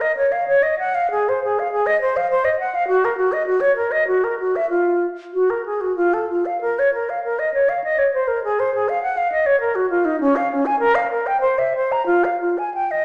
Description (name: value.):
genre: classical, baroque-style fantasia for unaccompanied flute.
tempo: 88-105 BPM.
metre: 3/4.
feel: rubato.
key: unclear.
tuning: A4 = 441 Hz.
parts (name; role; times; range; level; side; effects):
concert flute; solo; 0.0-13.0 s; Db4 to Bb5; -20 LUFS; equal; none.
room: wet recital hall reverb, RT60 1.4 s.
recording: none.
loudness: -20 LUFS.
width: mono.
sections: 0.0-13.0 A section.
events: none.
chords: none.